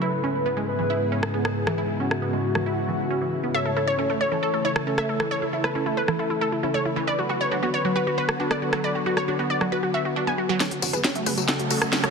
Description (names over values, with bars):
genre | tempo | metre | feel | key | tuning
uplifting trance | 136 BPM | 4/4 | straight | F# minor | A4 = 440 Hz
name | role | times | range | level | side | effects
warm velvety synth lead | second line | 0.0-10.5 s | F#4 to C#5 | -29 LUFS | left 2 dB | chorus, ping-pong delay
lush unison pad | sustained chords | 0.0-12.1 s | G#2 to B4 | -29 LUFS | left 1 dB | chorus
wide unison pluck | arpeggios | 0.0-12.1 s | E3 to B4 | -29 LUFS | right 4 dB | phaser, dub echo
techno drum kit | drums | 1.2-12.1 s | hi-hat, rim click, snare drum, tambourine | -27 LUFS | equal | soft clipping on snare
wide unison pluck | melody | 3.5-12.1 s | E4 to G#5 | -26 LUFS | equal | cassette tape, digital delay
riser | sound effects | 11.2-12.1 s | none | -34 LUFS | right 2 dB | none
plucky analog bass | bass | 10.8-11.9 s | E1 to F#1 | -35 LUFS | left 1 dB | high-pass filter
room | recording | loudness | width
moderate huge ambient reverb, RT60 4.5 s | dense, heavily limited modern master | -22 LUFS | side -5 dB against mid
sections
0.0-10.6 A section; 10.6-12.1 B section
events
filter sweep on synth pluck 0.0-10.6; build-up 10.6-12.1; drum fill 10.6-12.1; riser 11.2-12.1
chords
0.0 C#m7/G#; 3.5 A; 7.1 Bm; 10.6 F#m